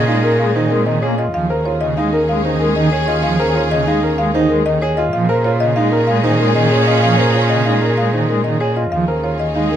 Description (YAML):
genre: classical, minimalist pattern music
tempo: 190 BPM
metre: 6/4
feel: straight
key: Bb minor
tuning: A4 = 438 Hz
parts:
  - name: buzzing marimba with medium hard mallets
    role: melody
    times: 0.0-9.8 s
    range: Bb4 to F5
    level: -20 LUFS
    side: left 2 dB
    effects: none
  - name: warm clarinet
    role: second line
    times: 0.0-9.8 s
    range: Ab4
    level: -24 LUFS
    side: right 2 dB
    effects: none
  - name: pipe organ, foundations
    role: accompaniment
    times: 0.0-9.7 s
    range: Db3 to Bb3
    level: -21 LUFS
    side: right 1 dB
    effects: none
  - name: clear studio string section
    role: sustained chords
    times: 0.0-9.8 s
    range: Db4 to Ab4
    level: -23 LUFS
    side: left 1 dB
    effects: none
  - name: rich cello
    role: bass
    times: 0.0-9.8 s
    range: Eb2 to Bb2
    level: -18 LUFS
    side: right 1 dB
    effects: none
  - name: clear baby grand piano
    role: arpeggios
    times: 0.1-9.8 s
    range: C4 to Bb4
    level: -21 LUFS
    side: right 2 dB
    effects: none
room: light reverb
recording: close, detailed microphones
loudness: -13 LUFS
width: side -10 dB against mid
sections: 0.0-9.8 A section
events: none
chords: 0.0 Bbm9; 1.3 Eb9sus4; 5.1 Bbm9; 8.9 Eb9sus4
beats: 0.08 0.40 0.71 1.03 | 1.34 1.66 1.97 2.29 2.61 2.92 | 3.24 3.55 3.87 4.18 4.50 4.82 | 5.13 5.45 5.76 6.08 6.39 6.71 | 7.03 7.34 7.66 7.97 8.29 8.61 | 8.92 9.24 9.55